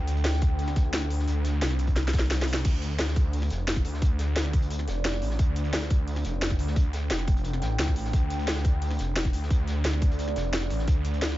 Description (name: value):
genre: dark technical drum and bass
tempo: 175 BPM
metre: 4/4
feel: straight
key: D minor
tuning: A4 = 437 Hz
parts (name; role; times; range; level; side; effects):
- wide detuned saw bass; bass; 0.0-11.4 s; F1 to D2; -27 LUFS; equal; chorus, overdrive, sidechain pumping
- deep dark ambient pad; texture; 0.0-11.4 s; D4 to G5; -37 LUFS; right 1 dB; chorus, built-in reverb, sidechain pumping
- crunchy breakbeat drum kit; drums; 0.1-11.4 s; hi-hat, snare drum; -41 LUFS; equal; high-pass filter on hats, small room ambience, high-pass filter on snare, high-pass filter on room
- drum and bass drum kit; drums; 0.1-11.3 s; crash cymbal, hi-hat, snare drum; -30 LUFS; equal; small room ambience
- electronic kick drum; drums; 0.4-10.9 s; none; -24 LUFS; equal; small room ambience
room: little or no reverb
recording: nothing above 7.6 kHz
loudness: -24 LUFS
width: side -16 dB against mid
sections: 0.0-2.6 A section; 2.6-11.4 A section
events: drop 0.0-2.6, 2.6-11.4; drum fill 2.0-2.6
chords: 0.0 D5